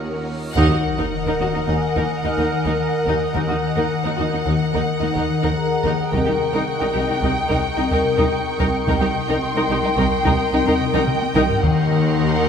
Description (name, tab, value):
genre	cinematic, suspense film score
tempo	108 BPM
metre	5/4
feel	straight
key	unclear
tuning	A4 = 439 Hz
part	warm studio violin section	melody	0.0-12.5 s	Gb5 to G5	-26 LUFS	left 1 dB	none
part	rich studio viola section	accompaniment	0.0-12.5 s	Db4 to Bb4	-27 LUFS	right 1 dB	none
part	shimmering ambient pad	sustained chords	0.0-12.5 s	Bb4 to G5	-25 LUFS	left 1 dB	chorus, built-in reverb
part	warm studio cello section	bass	0.0-12.5 s	C2 to Eb2	-26 LUFS	right 3 dB	none
part	warm studio double bass section	bass	0.0-12.5 s	C2 to Eb2	-27 LUFS	right 3 dB	none
part	reverse cymbal and sub drop	sound effects	0.3-3.4 s	none	-32 LUFS	equal	none
part	vibraphone with medium mallets	texture	0.0-11.7 s	F4 to F6	-32 LUFS	left 2 dB	none
part	warm studio violin section	texture	0.0-0.2, 6.1-12.5 s	G5 to Eb6	-33 LUFS	left 2 dB	none
part	warm studio violin section	second line	0.6-12.5 s	Eb4 to Bb4	-27 LUFS	left 1 dB	none
part	folk marimba with soft mallets	riff	0.6-12.5 s	C3 to Eb4	-24 LUFS	left 5 dB	none
part	taiko ensemble	drums	0.6-12.1 s	none	-27 LUFS	right 1 dB	none
room	moderate scoring stage reverb, RT60 2.0 s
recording	none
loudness	-17 LUFS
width	side -7 dB against mid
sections	0.6-12.5 A section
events	reverse cymbal 0.3; band accent 0.6-1.1; impact 0.6-3.4; drum fill 10.9-11.6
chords	0.0 Ebm7; 0.6 Ebm; 6.1 Cm7; 11.6 Ebm